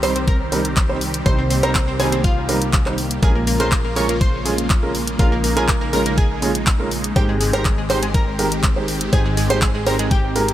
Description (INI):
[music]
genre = progressive house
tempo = 122 BPM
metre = 4/4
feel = straight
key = Bb dorian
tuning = A4 = 440 Hz
[part]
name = supersaw pad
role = sustained chords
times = 0.0-10.5 s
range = Db3 to G4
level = -25 LUFS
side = equal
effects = phaser, sidechain pumping
[part]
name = analog pluck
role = arpeggios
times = 0.0-10.5 s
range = Ab3 to Db5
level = -25 LUFS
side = equal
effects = chorus, sidechain pumping, dub echo
[part]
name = felt-muted upright piano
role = stabs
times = 0.0-10.4 s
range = G3 to C5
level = -23 LUFS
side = right 2 dB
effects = sidechain pumping, dub echo
[part]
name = plucky analog bass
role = bass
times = 0.0-10.5 s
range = Ab1 to C2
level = -24 LUFS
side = equal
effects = tube saturation, sidechain pumping
[part]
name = pop drum kit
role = drums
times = 0.0-10.5 s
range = handclaps, hi-hat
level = -24 LUFS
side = equal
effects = overdrive
[part]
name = electronic kick drum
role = drums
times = 0.3-10.2 s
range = none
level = -18 LUFS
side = equal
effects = overdrive
[sound]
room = light reverb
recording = none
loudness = -16 LUFS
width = side -13 dB against mid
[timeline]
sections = 0.0-10.5 A section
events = none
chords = 0.0 Cm; 3.2 Bbm7; 7.2 Abmaj7